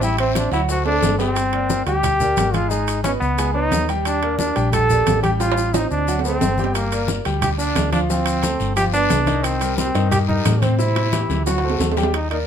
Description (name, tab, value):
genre	latin, salsa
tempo	178 BPM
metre	4/4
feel	straight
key	G minor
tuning	A4 = 439 Hz
part	brilliant trombone	melody	0.0-12.4 s	Bb3 to A4	-21 LUFS	equal	none
part	clear grand piano	accompaniment	0.0-12.5 s	C3 to Ab5	-24 LUFS	equal	none
part	hollow-body short-scale fingered electric bass	bass	0.0-12.5 s	G1 to A2	-22 LUFS	equal	none
part	bongos	percussion	0.0-12.5 s	none	-31 LUFS	left 5 dB	none
part	congas	percussion	0.0-12.5 s	none	-27 LUFS	left 2 dB	none
part	guiro	percussion	0.0-1.4, 6.8-12.5 s	none	-34 LUFS	left 6 dB	none
part	maracas	percussion	0.0-12.1 s	none	-33 LUFS	left 7 dB	none
part	timbales	percussion	0.2-12.5 s	none	-27 LUFS	right 7 dB	none
room	moderate studio reverb, RT60 0.8 s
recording	minimal, uncompressed stereo recording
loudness	-17 LUFS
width	side -8 dB against mid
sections	0.0-1.4 A section; 1.4-12.1 B section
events	drum fill 0.5-1.4, 5.4-6.8, 10.8-12.1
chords	0.0 Am7; 0.7 D5; 1.4 Gmadd11; 2.7 Abm; 3.4 C#sus2; 4.1 Ebmaj7; 5.4 Am7b5; 6.1 D7; 6.8 Gm7; 8.1 Dm7; 8.8 G7; 9.4 Cm7; 10.8 Am7; 11.5 D7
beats	| 0.02 0.36 0.69 1.03 | 1.37 1.70 2.04 2.38 | 2.71 3.05 3.39 3.72 | 4.06 4.40 4.73 5.07 | 5.41 5.74 6.08 6.42 | 6.75 7.09 7.42 7.76 | 8.10 8.44 8.77 9.11 | 9.45 9.78 10.12 10.46 | 10.79 11.13 11.47 11.80 | 12.14